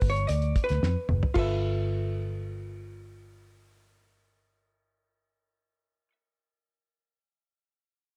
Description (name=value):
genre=funk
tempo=112 BPM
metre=4/4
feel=straight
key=G mixolydian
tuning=A4 = 443 Hz
part: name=vintage hollow-body jazz guitar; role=accompaniment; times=0.0-6.1 s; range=F4 to E5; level=-34 LUFS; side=equal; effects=none
part: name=vintage muted fingered electric bass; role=bass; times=0.0-6.1 s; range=F#1 to F2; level=-31 LUFS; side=equal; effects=none
part: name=cloth-damped thuddy drum kit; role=drums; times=0.0-1.5 s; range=crash cymbal, hi-hat, kick drum, snare drum, toms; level=-31 LUFS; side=equal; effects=none
room=small room ambience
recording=none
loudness=-28 LUFS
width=mono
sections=0.0-1.4 A section; 1.4-5.6 B section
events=hollow-body jazz guitar solo 0.0-1.4; drum fill 0.8-1.4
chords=0.0 G; 1.4 G13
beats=0.29 0.83 | 1.36 1.90 2.43 2.97 | 3.50 4.04 4.57 5.11